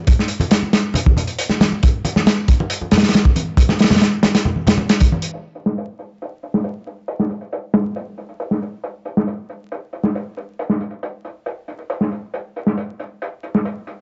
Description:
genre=breakbeat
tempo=137 BPM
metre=4/4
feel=straight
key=none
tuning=none
part: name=crunchy breakbeat drum kit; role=drums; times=0.1-14.0 s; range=hi-hat, kick drum, snare drum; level=-19 LUFS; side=equal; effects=low-pass filter on kick, low-pass filter on hats, low-pass filter on snare, low-pass filter on room
part: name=congas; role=percussion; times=0.1-5.2 s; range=none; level=-25 LUFS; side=equal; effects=none
room=light reverb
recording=dry, gritty hardware recording, vinyl crackle, nothing above 7.9 kHz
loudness=-18 LUFS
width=mono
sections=0.0-5.3 A section; 5.3-14.0 B section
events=none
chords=none

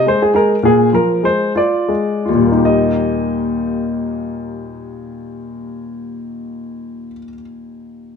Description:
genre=classical, baroque-style suite movement for grand piano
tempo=53-74 BPM (dotted quarters)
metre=6/8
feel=rubato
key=Eb major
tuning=A4 = 442 Hz
part: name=clear grand piano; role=solo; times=0.0-8.2 s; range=Eb2 to Eb5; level=-15 LUFS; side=left 1 dB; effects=none
room=wet stone room reverb, RT60 1.2 s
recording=dark, warm production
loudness=-13 LUFS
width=side -6 dB against mid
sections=0.0-2.6 A section; 2.6-7.0 B section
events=slowing down 0.0-2.6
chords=0.0 Ab; 0.6 Bb7; 2.6 Eb

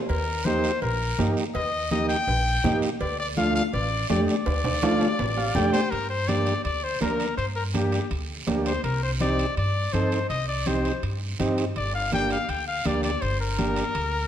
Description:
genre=latin, cumbia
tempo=164 BPM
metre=4/4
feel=straight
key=G minor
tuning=A4 = 439 Hz
part: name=bright trumpet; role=second line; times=0.1-14.3 s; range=G4 to G5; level=-28 LUFS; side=left 3 dB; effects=none
part: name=upright bass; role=bass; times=0.1-14.2 s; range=G1 to G2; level=-29 LUFS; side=equal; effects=none
part: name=congas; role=percussion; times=0.1-14.1 s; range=none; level=-33 LUFS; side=left 3 dB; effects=none
part: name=cowbell and timbales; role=percussion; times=0.1-14.1 s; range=none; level=-35 LUFS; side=right 5 dB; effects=none
part: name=guiro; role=percussion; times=0.1-14.3 s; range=none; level=-38 LUFS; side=right 6 dB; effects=none
part: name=combo organ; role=accompaniment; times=0.5-13.8 s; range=A3 to G5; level=-27 LUFS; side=right 2 dB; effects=none
room=moderate large studio reverb, RT60 1.4 s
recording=none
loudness=-22 LUFS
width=side -10 dB against mid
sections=0.0-5.9 A section; 5.9-14.3 B section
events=trumpet solo 0.0-5.9, 5.9-14.3; drum fill 4.5-5.9; transistor combo organ fill 5.2-5.9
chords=0.1 Eb; 3.0 Dm; 5.9 Gm; 8.8 Cm; 11.8 Gm

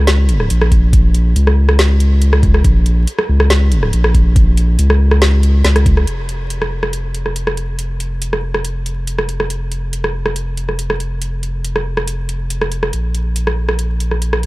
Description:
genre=deep dubstep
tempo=140 BPM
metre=4/4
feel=half-time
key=unclear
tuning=A4 = 439 Hz
part: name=saturated sub bass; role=bass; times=0.0-14.5 s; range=F1 to Db2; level=-14 LUFS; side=equal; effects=tube saturation
part: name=garage drum kit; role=drums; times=0.1-14.5 s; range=hi-hat, rim click, snare drum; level=-19 LUFS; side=equal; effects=none
part: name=electronic kick drum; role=drums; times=0.7-5.9 s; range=none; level=-12 LUFS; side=equal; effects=none
room=little or no reverb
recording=vinyl crackle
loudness=-12 LUFS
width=side -20 dB against mid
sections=0.0-6.1 A section; 6.1-14.5 B section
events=band accent 6.0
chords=none

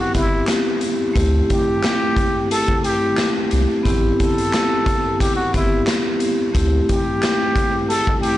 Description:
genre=hip hop, boom-bap hip-hop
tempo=89 BPM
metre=4/4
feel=swing 54% on 16ths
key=A minor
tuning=A4 = 441 Hz
part: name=trumpet with plunger mute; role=melody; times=0.0-8.4 s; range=E4 to A4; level=-23 LUFS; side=equal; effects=high-pass filter, low-pass filter, digital delay
part: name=vibraphone with medium hard mallets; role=accompaniment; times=0.0-8.4 s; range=A3 to G4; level=-20 LUFS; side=left 1 dB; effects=cassette tape, high-pass filter, low-pass filter
part: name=raw garage drum kit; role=drums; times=0.1-8.4 s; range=handclaps, hi-hat, kick drum, snare drum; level=-21 LUFS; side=equal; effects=none
part: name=warm sub bass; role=bass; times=0.2-6.8 s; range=G1 to D2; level=-19 LUFS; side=equal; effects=tube saturation
room=light reverb, studio reverb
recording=blown-out, overdriven recording, vinyl crackle, overdrive, nothing above 10.3 kHz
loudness=-16 LUFS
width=side -14 dB against mid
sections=0.0-8.4 A section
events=none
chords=0.0 Am7 (rootless); 1.2 D7sus4 (rootless); 3.9 Am7; 6.5 D7sus4

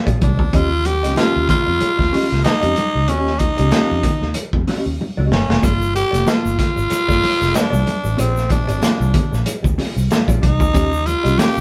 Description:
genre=funk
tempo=94 BPM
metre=4/4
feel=swing 56% on 16ths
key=unclear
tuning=A4 = 435 Hz
part: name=mellow electric guitar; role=accompaniment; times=0.1-11.6 s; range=Bb3 to F5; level=-27 LUFS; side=equal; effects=none
part: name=vintage muted fingered electric bass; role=bass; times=0.1-11.6 s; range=F1 to F2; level=-22 LUFS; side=equal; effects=none
part: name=crunchy breakbeat drum kit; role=drums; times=0.1-11.6 s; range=hi-hat, kick drum, snare drum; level=-22 LUFS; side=equal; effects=none
part: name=congas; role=percussion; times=0.1-11.5 s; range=none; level=-28 LUFS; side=equal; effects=none
part: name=growling tenor saxophone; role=melody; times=0.2-11.6 s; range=C4 to G4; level=-22 LUFS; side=equal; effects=none
part: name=egg shaker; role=percussion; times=5.6-11.6 s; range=none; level=-41 LUFS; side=equal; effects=none
room=moderate studio reverb, RT60 0.8 s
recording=band playing live in one room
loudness=-17 LUFS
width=mono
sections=0.0-11.6 A section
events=drum fill 5.0-5.6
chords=0.0 Bb9; 0.5 Eb9; 5.6 Gm9; 8.2 Bb9; 10.7 Eb9

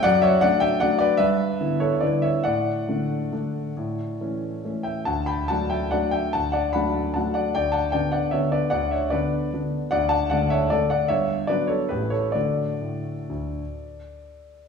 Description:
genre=classical, piano waltz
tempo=126-162 BPM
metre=3/4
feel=rubato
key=D major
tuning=A4 = 440 Hz
part: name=clear grand piano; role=solo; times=0.0-14.7 s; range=G1 to B5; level=-21 LUFS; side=left 1 dB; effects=none
room=wet recital hall reverb, RT60 1.5 s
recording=heard from further back in the room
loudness=-21 LUFS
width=side -6 dB against mid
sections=0.0-14.7 A section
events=none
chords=0.0 D/F#; 1.2 Em7/G; 2.5 D/A; 3.8 A; 5.1 D; 7.6 Dmaj13; 9.9 D; 11.1 Gmaj7; 11.9 A7; 12.4 D

